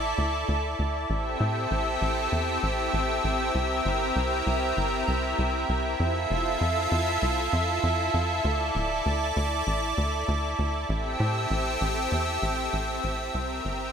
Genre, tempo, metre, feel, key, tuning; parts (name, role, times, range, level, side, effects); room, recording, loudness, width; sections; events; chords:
synthwave; 98 BPM; 4/4; straight; A minor; A4 = 437 Hz
lush unison pad; sustained chords; 0.0-13.9 s; C4 to E5; -26 LUFS; equal; chorus
tight sequencer bass; bass; 0.0-13.9 s; D1 to A2; -29 LUFS; equal
moderate plate reverb, RT60 3.5 s; bright 1980s-style digital production; -24 LUFS; side -7 dB against mid
0.0-13.9 A section
fade-out 11.7-13.9
0.0 Dsus2; 1.1 Am7; 3.5 C7; 6.0 Fmaj7; 8.4 Dsus2; 10.9 Am7; 13.3 C7